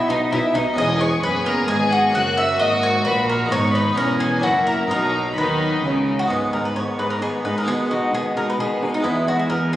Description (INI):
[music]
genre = classical, baroque-style concerto movement with solo episodes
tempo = 131 BPM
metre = 3/4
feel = straight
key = B major, G# minor from 6.3 s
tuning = A4 = 440 Hz
[part]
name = bowl-back mandolin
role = melody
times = 0.0-9.8 s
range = D#4 to F#5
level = -22 LUFS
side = equal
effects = none
[part]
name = rich chamber violin section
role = melody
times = 0.0-9.8 s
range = B4 to F#6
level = -28 LUFS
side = left 2 dB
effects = none
[part]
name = harpsichord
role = accompaniment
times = 0.0-9.8 s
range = E2 to G#4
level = -25 LUFS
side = right 1 dB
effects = none
[part]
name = rich chamber violin section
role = second line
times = 0.1-9.7 s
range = B3 to G#4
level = -25 LUFS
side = left 2 dB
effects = none
[part]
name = dark chamber viola section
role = accompaniment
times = 0.1-9.8 s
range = D#3 to B3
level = -29 LUFS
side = equal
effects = none
[part]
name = rich chamber cello section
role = bass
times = 0.1-9.8 s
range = E2 to D#3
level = -26 LUFS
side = right 1 dB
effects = none
[part]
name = rich studio double bass section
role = bass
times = 0.1-6.3 s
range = E1 to D#2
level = -29 LUFS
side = right 2 dB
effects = none
[sound]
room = wet concert hall reverb, RT60 1.8 s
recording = recorded on a phone in the room, studio reverb, compression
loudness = -17 LUFS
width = side -13 dB against mid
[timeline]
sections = 0.0-6.3 A section; 6.3-9.8 B section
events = none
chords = 0.0 G#m/B; 0.8 C#m7/E; 2.1 F#; 3.5 G#m; 4.0 C#m7/E; 4.4 F#7; 4.9 B; 6.3 G#m; 7.7 G#m/B; 9.0 E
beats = 0.32 | 0.77 1.23 1.69 | 2.14 2.60 3.05 | 3.51 3.97 4.43 | 4.90 5.37 5.84 | 6.30 6.76 7.22 | 7.67 8.13 8.59 | 9.04 9.50